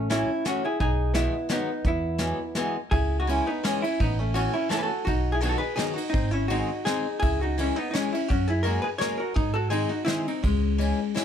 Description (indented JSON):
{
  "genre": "musette waltz",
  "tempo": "168 BPM",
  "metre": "3/4",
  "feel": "rubato",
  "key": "C# minor",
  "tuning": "A4 = 440 Hz",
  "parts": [
    { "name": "vintage hollow-body jazz guitar", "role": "melody", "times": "0.0-11.2 s", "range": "G#3 to C#5", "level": "-27 LUFS", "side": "left 1 dB", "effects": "none" },
    { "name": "upright bass", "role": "bass", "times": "0.0-10.9 s", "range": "G#1 to G#2", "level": "-27 LUFS", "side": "right 1 dB", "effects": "none" },
    { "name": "picked acoustic archtop guitar", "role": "accompaniment", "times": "0.1-11.2 s", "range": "D#3 to E4", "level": "-31 LUFS", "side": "left 2 dB", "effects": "none" },
    { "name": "soft brush drum kit", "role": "drums", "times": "0.1-11.2 s", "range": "hi-hat, kick drum, ride cymbal, snare drum", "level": "-31 LUFS", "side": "right 1 dB", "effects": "none" }
  ],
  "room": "little or no reverb",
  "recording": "close, detailed microphones",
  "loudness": "-23 LUFS",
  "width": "side -8 dB against mid",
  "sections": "0.0-2.9 A section; 2.9-11.2 B section",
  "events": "none",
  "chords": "0.0 F#m7/A; 0.8 B6; 1.9 Eadd9; 2.9 C#m7; 4.0 Aadd9; 5.1 B; 6.1 G#; 7.2 C#m; 8.3 F#add9; 9.4 G#; 10.4 C#m"
}